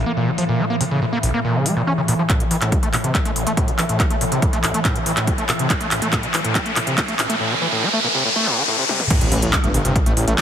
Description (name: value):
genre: driving peak-time techno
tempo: 141 BPM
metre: 4/4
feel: straight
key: A phrygian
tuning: A4 = 445 Hz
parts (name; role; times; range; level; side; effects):
- screaming distorted acid line; riff; 0.0-10.4 s; A1 to Db4; -22 LUFS; equal; distortion, chorus, cassette tape, sidechain pumping, ping-pong delay
- swarming drone; drone; 0.0-10.4 s; A2 to E3; -26 LUFS; equal; built-in reverb, sidechain pumping
- techno drum kit; drums; 0.4-10.4 s; crash cymbal, handclaps, hi-hat, toms; -23 LUFS; equal; none
- electronic kick drum; drums; 2.3-10.4 s; none; -20 LUFS; equal; none
- riser and impact; sound effects; 4.2-10.4 s; none; -23 LUFS; equal; none
- detuned saw bass; bass; 9.2-10.3 s; G1 to A1; -20 LUFS; equal; sidechain pumping
room: moderate huge ambient reverb, RT60 4.4 s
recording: heavily compressed radio sound, high-pass filter, low-pass filter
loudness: -16 LUFS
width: side -9 dB against mid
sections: 0.0-2.3 A section; 2.3-9.1 B section; 9.1-10.4 C section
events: build-up 2.3-9.1; drum fill 2.3-7.4, 8.9; filter sweep on acid bass 2.3-9.1; filter sweep 2.3-9.1; riser 4.2-9.1; drop 9.1-10.4; impact 9.1-10.4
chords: 0.0 Bbm; 2.3 A5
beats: 0.17 | 0.59 1.02 1.45 1.87 | 2.30 2.72 3.15 3.57 | 4.00 4.42 4.85 5.28 | 5.70 6.13 6.55 6.98 | 7.40 7.83 8.25 8.68 | 9.11 9.53 9.96 10.38